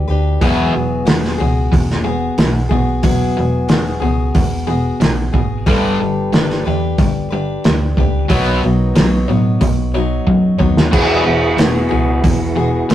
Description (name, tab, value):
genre	folk rock and heartland rock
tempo	91 BPM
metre	4/4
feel	straight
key	E major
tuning	A4 = 441 Hz
part	picked plugged-in steel-string acoustic guitar	accompaniment	0.0-12.9 s	B2 to C#5	-20 LUFS	left 2 dB	none
part	hollow-body short-scale fingered electric bass	bass	0.0-12.9 s	E1 to A2	-20 LUFS	equal	none
part	overdriven semi-hollow guitar	riff	0.4-12.9 s	E2 to B3	-19 LUFS	equal	none
part	cloth-damped thuddy drum kit	drums	0.4-12.9 s	crash cymbal, hi-hat, kick drum, snare drum	-15 LUFS	right 1 dB	none
part	reed electric piano	accompaniment	10.9-12.3 s	G#4 to F#5	-23 LUFS	right 5 dB	fast tremolo
part	mellow tonewheel organ	sustained chords	10.9-12.9 s	E4 to B4	-21 LUFS	right 2 dB	chorus vibrato
room	moderate small room reverb, RT60 0.5 s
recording	rough rehearsal-room recording, tube saturation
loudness	-13 LUFS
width	side -12 dB against mid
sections	0.0-10.9 A section; 10.9-12.9 A section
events	drum fill 10.3-10.9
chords	0.4 Eadd9; 5.7 Gadd9; 8.3 Badd9; 10.9 Eadd9